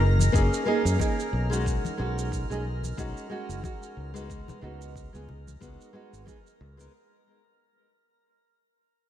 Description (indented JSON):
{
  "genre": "sunset chillout",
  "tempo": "91 BPM",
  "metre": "4/4",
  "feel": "swing 56% on 16ths",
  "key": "F# major",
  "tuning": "A4 = 440 Hz",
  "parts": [
    { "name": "fingered electric bass", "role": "bass", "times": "0.0-6.9 s", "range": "F#1 to F#2", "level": "-27 LUFS", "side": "equal", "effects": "none" },
    { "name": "drifting glass-harmonics texture", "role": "texture", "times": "0.0-7.0 s", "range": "A#4 to A#5", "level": "-38 LUFS", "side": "right 3 dB", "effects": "chorus, built-in reverb" },
    { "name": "shaker", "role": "drums", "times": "0.2-6.9 s", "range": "none", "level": "-39 LUFS", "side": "right 6 dB", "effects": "none" },
    { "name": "congas", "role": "percussion", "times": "0.2-6.4 s", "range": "none", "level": "-34 LUFS", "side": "left 5 dB", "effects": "none" },
    { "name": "nylon-string guitar", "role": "accompaniment", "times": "0.3-6.9 s", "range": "G#3 to A#4", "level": "-31 LUFS", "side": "moving between left 4 dB and right 4 dB", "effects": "auto-pan, diffuse ambient delay" },
    { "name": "electronic kick drum", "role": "drums", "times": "0.3-6.4 s", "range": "none", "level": "-30 LUFS", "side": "equal", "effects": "none" }
  ],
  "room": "light reverb, digital ambience",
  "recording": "none",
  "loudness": "-25 LUFS",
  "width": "side -11 dB against mid",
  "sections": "0.0-6.9 A section",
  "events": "fade-out 0.0-6.9",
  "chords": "0.0 F#6; 4.3 C#9sus4",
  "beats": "0.34 1.00 | 1.66 2.32 2.98 3.64 | 4.30 4.96 5.61 6.27"
}